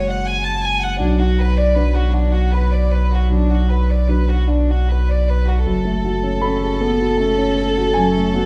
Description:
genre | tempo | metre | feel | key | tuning
neoclassical piano and strings | 78 BPM | 3/4 | rubato | F# minor | A4 = 440 Hz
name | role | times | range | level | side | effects
warm chamber violin section | melody | 0.0-8.5 s | D4 to A5 | -24 LUFS | equal | none
warm cello | second line | 0.0-8.5 s | F#3 to C#4 | -29 LUFS | equal | none
dark concert grand piano | accompaniment | 0.0-8.5 s | B1 to B5 | -24 LUFS | equal | none
saturated sub bass | bass | 0.0-8.5 s | F#1 to B1 | -20 LUFS | equal | none
room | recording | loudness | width
moderate recital hall reverb, RT60 1.6 s | recorded in a church or concert hall | -17 LUFS | mono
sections
0.0-5.7 A section; 5.7-8.5 B section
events
none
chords
0.0 F#sus2; 1.0 Bm; 5.7 F#madd9

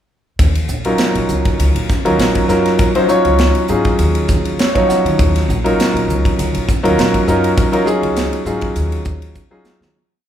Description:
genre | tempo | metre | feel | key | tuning
electric jazz fusion | 100 BPM | 4/4 | swing 54% on 16ths | Eb minor | A4 = 440 Hz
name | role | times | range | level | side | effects
upright bass | bass | 0.4-9.9 s | Bb1 to Eb3 | -19 LUFS | equal | none
crisp fusion drum kit | drums | 0.4-9.9 s | hi-hat, kick drum, ride cymbal, snare drum | -18 LUFS | equal | none
clear grand piano | accompaniment | 0.9-9.9 s | F3 to Gb5 | -15 LUFS | equal | none
room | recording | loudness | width
moderate large studio reverb, RT60 1.1 s | band playing live in one room | -13 LUFS | side -10 dB against mid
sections
0.4-10.0 groove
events
grand piano fill 4.3-5.2; fade-out 7.6-10.0; drum fill 9.4-10.0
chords
0.4 Ebm9

